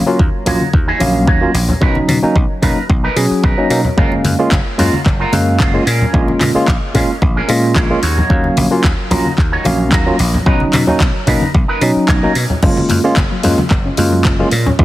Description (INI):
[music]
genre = nu-disco, nu disco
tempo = 111 BPM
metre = 4/4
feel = swing 54% on 16ths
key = F# major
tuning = A4 = 440 Hz
[part]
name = barky tine electric piano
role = accompaniment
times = 0.0-14.8 s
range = F#3 to E#5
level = -16 LUFS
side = equal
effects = medium stereo tremolo, sidechain pumping, tape echo
[part]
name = dry thumbed slap bass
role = bass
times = 0.2-14.8 s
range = F#1 to B2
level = -17 LUFS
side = equal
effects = none
[part]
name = electronic kick drum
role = drums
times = 0.2-14.8 s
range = none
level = -14 LUFS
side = equal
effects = overdrive
[part]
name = electric guitar with an envelope filter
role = riff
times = 0.5-12.4 s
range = C#4 to C#5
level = -22 LUFS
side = right 2 dB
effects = wide subtle chorus, tape echo
[part]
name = house drum kit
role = drums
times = 0.5-14.6 s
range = crash cymbal, handclaps, hi-hat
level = -22 LUFS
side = left 1 dB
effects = overdrive
[part]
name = congas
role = percussion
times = 0.5-14.8 s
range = none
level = -21 LUFS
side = left 1 dB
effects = none
[part]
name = wide unison pluck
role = arpeggios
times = 12.6-14.8 s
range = E#3 to C#4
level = -22 LUFS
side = left 3 dB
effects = cassette tape, sidechain pumping, tape echo
[sound]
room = light reverb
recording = heavily compressed radio sound, multiband compression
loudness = -11 LUFS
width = side -15 dB against mid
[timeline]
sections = 0.0-14.8 A section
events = clean electric guitar fill 7.5-8.3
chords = 0.0 D#m7; 1.8 Bmaj7; 4.0 F#maj7; 5.9 A#m7; 8.0 D#m7; 10.5 Bmaj7; 12.6 F#maj7